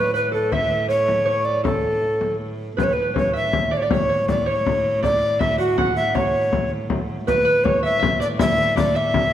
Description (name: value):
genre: medieval dance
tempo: 107 BPM (dotted quarters)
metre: 6/8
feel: straight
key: A major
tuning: A4 = 437 Hz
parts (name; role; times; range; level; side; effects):
- breathy bass recorder; melody; 0.0-9.3 s; F#4 to E5; -20 LUFS; equal; none
- concert harp; second line; 0.0-9.3 s; A4 to F#5; -26 LUFS; right 3 dB; none
- rich viola da gamba; drone; 0.0-9.3 s; A2; -28 LUFS; equal; none
- frame drum; percussion; 0.3-9.3 s; none; -24 LUFS; left 3 dB; none
room: wet recital hall reverb, RT60 1.5 s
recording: dark, warm production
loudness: -18 LUFS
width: side -11 dB against mid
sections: 0.0-2.8 A section; 2.8-9.3 B section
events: none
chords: none